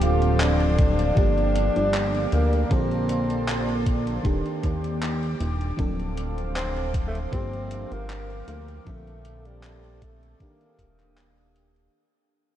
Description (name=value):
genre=vaporwave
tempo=78 BPM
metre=4/4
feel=swing 53% on 16ths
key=unclear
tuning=A4 = 445 Hz
part: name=breathy tenor saxophone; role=melody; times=0.0-11.5 s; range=G3 to F4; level=-29 LUFS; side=equal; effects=vintage 12-bit sampler grit, tape echo
part: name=FM electric piano with soft pad layer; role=accompaniment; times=0.0-12.0 s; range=Bb2 to A4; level=-30 LUFS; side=right 1 dB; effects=wide subtle chorus, ping-pong delay
part: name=warbly tape-like pad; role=sustained chords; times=0.0-11.9 s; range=Bb3 to Eb6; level=-33 LUFS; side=right 2 dB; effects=chorus, built-in reverb, vintage 12-bit sampler grit
part: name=chorused synth bass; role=bass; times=0.0-11.9 s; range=D1 to Eb2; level=-26 LUFS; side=equal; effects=tube saturation
part: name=gated 80s digital drum machine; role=drums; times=0.0-11.9 s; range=handclaps, hi-hat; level=-34 LUFS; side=equal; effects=gated reverb, overdrive
part: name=electronic kick drum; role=drums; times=0.8-10.9 s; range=none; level=-24 LUFS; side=equal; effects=overdrive
room=moderate huge ambient reverb, RT60 7.1 s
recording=dreamy mix soaked in reverb, cassette tape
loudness=-22 LUFS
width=side -11 dB against mid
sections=0.0-11.9 A section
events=fade-out 0.0-11.9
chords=0.0 Dm7; 1.2 Gm7; 2.7 Bbmaj9; 4.2 Ebmaj7; 5.8 Dm7; 7.3 Gm7; 8.9 Bbmaj9; 10.4 Ebmaj7